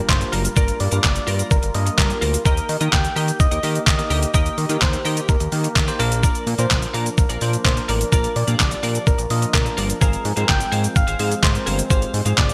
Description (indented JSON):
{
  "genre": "dance-pop",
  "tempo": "127 BPM",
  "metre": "4/4",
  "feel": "straight",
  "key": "unclear",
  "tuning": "A4 = 439 Hz",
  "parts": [
    { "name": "soft struck synth lead", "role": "melody", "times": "0.0-12.5 s", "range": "Bb4 to G5", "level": "-29 LUFS", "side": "equal", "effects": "chorus, delay" },
    { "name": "bell-like tine electric piano", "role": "accompaniment", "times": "0.0-12.5 s", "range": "Ab3 to C5", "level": "-32 LUFS", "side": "equal", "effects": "sidechain pumping" },
    { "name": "mellow brass ensemble", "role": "sustained chords", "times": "0.0-12.5 s", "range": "Eb3 to Bb4", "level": "-35 LUFS", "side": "equal", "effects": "none" },
    { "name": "impact", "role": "sound effects", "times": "0.0-0.6 s", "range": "none", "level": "barely audible", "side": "none", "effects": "none" },
    { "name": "fat analog bass", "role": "bass", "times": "0.1-12.5 s", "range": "F#1 to Eb3", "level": "-25 LUFS", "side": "equal", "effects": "sidechain pumping" },
    { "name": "detuned 8-bit digital drum machine", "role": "drums", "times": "0.1-12.5 s", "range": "handclaps, hi-hat, kick drum, shaker, snare drum", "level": "-22 LUFS", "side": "equal", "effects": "overdrive, gated reverb" },
    { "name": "twelve-string electric guitar", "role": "riff", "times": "0.2-12.5 s", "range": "F4 to F5", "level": "-32 LUFS", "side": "equal", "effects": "analog chorus" }
  ],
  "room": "light reverb",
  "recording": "bright 1980s-style digital production",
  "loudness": "-19 LUFS",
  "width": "mono",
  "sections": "0.0-12.5 A section",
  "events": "impact 0.0-0.6",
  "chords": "0.0 Gm7; 2.5 Eb; 6.0 Bb; 10.0 Fm",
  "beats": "0.09 | 0.57 1.04 1.51 1.98 | 2.46 2.93 3.40 3.87 | 4.35 4.82 5.29 5.76 | 6.24 6.71 7.18 7.65 | 8.12 8.60 9.07 9.54 | 10.02 10.49 10.96 11.43 | 11.90 12.38"
}